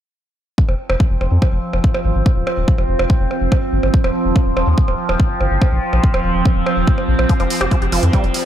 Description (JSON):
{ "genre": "psychedelic trance", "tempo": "143 BPM", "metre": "4/4", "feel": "straight", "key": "unclear", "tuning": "A4 = 440 Hz", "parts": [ { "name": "overtone-sweeping drone", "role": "sustained chords", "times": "1.2-8.5 s", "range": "F3 to C4", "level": "-20 LUFS", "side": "right 2 dB", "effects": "chorus, built-in reverb, sidechain pumping" }, { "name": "electronic kick drum", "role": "drums", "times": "0.6-8.2 s", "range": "none", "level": "-15 LUFS", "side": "equal", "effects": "none" }, { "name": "round analog bass", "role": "bass", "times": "0.7-8.3 s", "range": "Eb1 to F2", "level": "-18 LUFS", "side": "equal", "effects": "none" }, { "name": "electronic percussion blips and hi-hat", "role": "drums", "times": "0.7-8.4 s", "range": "none", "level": "-24 LUFS", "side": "right 2 dB", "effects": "none" }, { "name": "liquid acid bass", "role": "riff", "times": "7.3-8.3 s", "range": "Eb3 to G4", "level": "-21 LUFS", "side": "right 1 dB", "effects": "chorus, auto-pan, sidechain pumping, analog delay" } ], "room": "light reverb", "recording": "none", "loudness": "-14 LUFS", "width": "side -11 dB against mid", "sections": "0.6-8.5 A section", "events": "none", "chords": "0.6 F5; 3.9 Eb5; 7.3 F5", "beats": "| 0.58 1.00 1.42 1.84 | 2.26 2.68 3.10 3.52 | 3.94 4.36 4.78 5.20 | 5.62 6.04 6.46 6.88 | 7.29 7.71 8.13" }